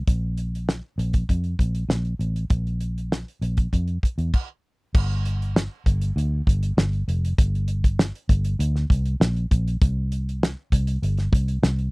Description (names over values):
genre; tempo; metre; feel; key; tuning
indie pop, bedroom pop; 99 BPM; 4/4; straight; unclear; A4 = 441 Hz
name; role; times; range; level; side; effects
vintage muted fingered electric bass; bass; 0.1-11.9 s; F1 to F2; -23 LUFS; equal; none
damped 70s drum kit; drums; 0.1-11.9 s; crash cymbal, hi-hat, kick drum, snare drum; -20 LUFS; equal; none
room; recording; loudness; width
little or no reverb; dry, close 1970s-style studio recording; -21 LUFS; side -28 dB against mid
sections
0.0-4.9 A section; 4.9-11.9 B section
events
stop 4.3-4.9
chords
none